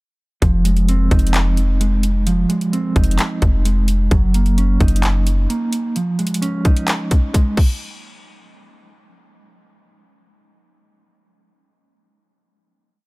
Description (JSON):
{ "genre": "hip hop, trap", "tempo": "130 BPM", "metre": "4/4", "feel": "half-time", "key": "F phrygian", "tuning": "A4 = 441 Hz", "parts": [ { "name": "mellow electric guitar", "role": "accompaniment", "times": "0.4-7.6 s", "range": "F3 to Eb4", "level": "-21 LUFS", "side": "right 2 dB", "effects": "tremolo" }, { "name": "hard-hitting 808-style bass", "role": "bass", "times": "0.4-5.5 s", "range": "F1 to Gb1", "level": "-16 LUFS", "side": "equal", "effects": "none" }, { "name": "trap drum kit", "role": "drums", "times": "0.4-7.7 s", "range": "crash cymbal, handclaps, hi-hat, kick drum", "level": "-18 LUFS", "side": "equal", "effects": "none" } ], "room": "little or no reverb", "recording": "none", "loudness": "-15 LUFS", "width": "side -24 dB against mid", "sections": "0.4-7.8 verse; 7.8-11.5 final hit", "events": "none", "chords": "0.4 Fm7; 4.1 Gb6; 6.0 Dbadd9; 7.6 N.C." }